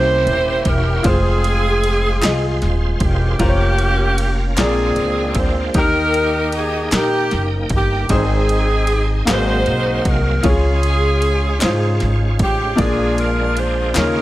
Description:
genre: slow gospel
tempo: 51 BPM (dotted quarters)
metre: 6/8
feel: straight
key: unclear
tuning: A4 = 440 Hz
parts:
  - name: bright saxophone section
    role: melody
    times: 0.0-14.2 s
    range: Bb3 to C5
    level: -19 LUFS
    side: right 1 dB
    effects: none
  - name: clear grand piano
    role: accompaniment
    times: 0.0-14.2 s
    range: Ab2 to F5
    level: -22 LUFS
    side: left 2 dB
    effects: none
  - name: bright tonewheel organ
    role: sustained chords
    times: 0.0-14.2 s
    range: Db3 to G5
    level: -26 LUFS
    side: right 3 dB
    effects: slow rotary speaker, chorus vibrato
  - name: upright bass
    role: bass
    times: 0.0-14.2 s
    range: Eb1 to Bb2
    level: -19 LUFS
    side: equal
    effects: none
  - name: punchy analog drum machine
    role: drums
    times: 0.3-14.1 s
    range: kick drum, ride cymbal, snare drum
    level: -21 LUFS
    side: equal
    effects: overdrive
  - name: group handclap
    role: percussion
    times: 2.2-14.2 s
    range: none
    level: -27 LUFS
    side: left 3 dB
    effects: none
room: studio reverb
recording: none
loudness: -14 LUFS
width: side -16 dB against mid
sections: 0.0-14.2 A section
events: none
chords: 0.0 C7b9; 1.1 Fm; 3.4 Bbm/F; 4.6 Bb9; 5.8 Eb; 8.1 Ab; 9.3 Ab13; 10.4 Db; 12.8 Bb7

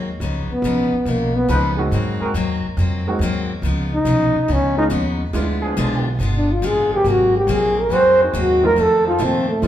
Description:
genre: jazz, big band swing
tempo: 140 BPM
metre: 4/4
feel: swing 68% on 8ths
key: unclear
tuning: A4 = 440 Hz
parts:
  - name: picked steel-string acoustic guitar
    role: accompaniment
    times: 0.0-9.7 s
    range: F2 to F4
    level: -25 LUFS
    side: left 3 dB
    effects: none
  - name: upright bass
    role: bass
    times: 0.0-9.7 s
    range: G1 to Bb2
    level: -22 LUFS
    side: equal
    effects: none
  - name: breathy trombone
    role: melody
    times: 0.5-9.7 s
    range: A3 to C5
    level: -16 LUFS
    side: equal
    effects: none
  - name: warm trombone section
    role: sustained chords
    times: 1.5-2.3, 5.6-9.6 s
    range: F3 to Cb5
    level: -26 LUFS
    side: right 1 dB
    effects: none
  - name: warm upright piano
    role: accompaniment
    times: 1.8-6.0, 8.6-9.7 s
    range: F3 to Gb4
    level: -25 LUFS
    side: right 2 dB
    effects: none
room: wet large studio reverb, RT60 1.4 s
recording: heard from further back in the room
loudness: -16 LUFS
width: side -11 dB against mid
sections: 0.0-9.7 A section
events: trombone solo 0.0-9.7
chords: 0.2 Db9; 1.9 Ab9; 3.6 Db9; 5.3 Ddim7; 7.1 Ab9; 8.8 F7

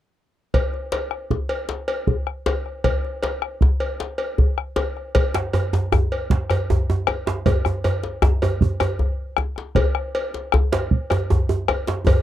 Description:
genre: west african traditional, West African drum ensemble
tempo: 104 BPM (dotted quarters)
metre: 12/8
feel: straight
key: none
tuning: none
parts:
  - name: bombo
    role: percussion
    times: 0.5-12.2 s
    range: none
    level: -21 LUFS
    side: equal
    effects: none
  - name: cowbell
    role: percussion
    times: 0.5-12.2 s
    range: none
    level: -26 LUFS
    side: left 1 dB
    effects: none
  - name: djembe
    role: percussion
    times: 0.5-12.2 s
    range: none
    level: -22 LUFS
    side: left 1 dB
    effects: none
  - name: djembe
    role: percussion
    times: 5.3-12.2 s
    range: none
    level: -22 LUFS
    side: right 2 dB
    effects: none
room: little or no reverb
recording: dry, close 1970s-style studio recording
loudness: -20 LUFS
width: side -12 dB against mid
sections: 0.5-5.2 A section; 5.2-12.2 B section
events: drum fill 12.1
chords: none

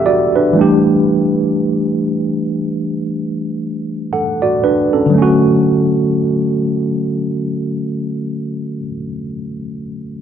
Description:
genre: R&B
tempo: 59 BPM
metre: 4/4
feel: swing 58% on 16ths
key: D major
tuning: A4 = 441 Hz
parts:
  - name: tine electric piano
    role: accompaniment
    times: 0.0-10.2 s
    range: D3 to F#5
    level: -14 LUFS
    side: right 1 dB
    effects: medium stereo tremolo
room: moderate concert hall reverb, RT60 2.1 s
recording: dark, warm production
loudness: -14 LUFS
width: side -9 dB against mid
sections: 0.0-5.1 A section; 5.1-9.2 B section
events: none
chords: 0.0 Em7; 0.6 A7sus4/E; 5.1 Dmaj7

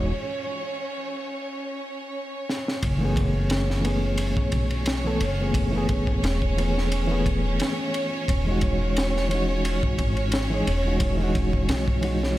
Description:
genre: trip hop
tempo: 88 BPM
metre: 4/4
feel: swing 54% on 16ths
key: F# dorian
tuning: A4 = 438 Hz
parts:
  - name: reed electric piano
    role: accompaniment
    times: 0.0-12.4 s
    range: E3 to A4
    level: -28 LUFS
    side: equal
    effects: fast tremolo, tape echo
  - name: rich studio violin section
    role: sustained chords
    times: 0.0-12.4 s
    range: C#4 to C#5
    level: -30 LUFS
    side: right 1 dB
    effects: none
  - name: upright bass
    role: bass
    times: 0.0-12.4 s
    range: E1 to B1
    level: -26 LUFS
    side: equal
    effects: none
  - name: crunchy breakbeat drum kit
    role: drums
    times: 2.5-12.4 s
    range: kick drum, ride cymbal, snare drum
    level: -28 LUFS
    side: equal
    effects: none
room: light reverb, small room ambience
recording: none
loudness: -22 LUFS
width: side -15 dB against mid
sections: 0.0-2.8 A section; 2.8-12.4 B section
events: filter sweep on reed electric piano 0.0-2.8; break 0.1-2.8; drum fill 2.5-2.8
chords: 0.0 N.C.; 2.8 F#m11; 8.3 Emaj9

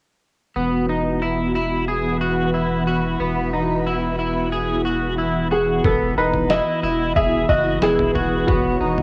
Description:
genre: dream pop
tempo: 91 BPM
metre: 4/4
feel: straight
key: E major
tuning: A4 = 439 Hz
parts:
  - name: ensemble organ-string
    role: sustained chords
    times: 0.6-9.0 s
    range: E3 to C#5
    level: -25 LUFS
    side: equal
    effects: phaser, ensemble chorus, cassette tape
  - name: electric guitar at the edge of break-up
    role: arpeggios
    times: 0.6-9.0 s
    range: B3 to G#4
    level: -26 LUFS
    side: equal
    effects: analog chorus, cassette tape, tape echo
  - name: round analog bass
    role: bass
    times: 0.6-9.0 s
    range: E1 to F#1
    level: -30 LUFS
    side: equal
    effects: none
  - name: felt-muted upright piano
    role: melody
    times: 5.5-9.0 s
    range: F#4 to E5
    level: -22 LUFS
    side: equal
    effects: cassette tape, tape echo
  - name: lo-fi sampler-style drum kit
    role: drums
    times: 5.8-9.0 s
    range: kick drum, snare drum, toms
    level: -26 LUFS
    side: equal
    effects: cassette tape
room: light reverb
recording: home recording on cassette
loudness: -20 LUFS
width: mono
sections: 0.6-5.8 A section; 5.8-9.0 B section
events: none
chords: 0.6 Esus2

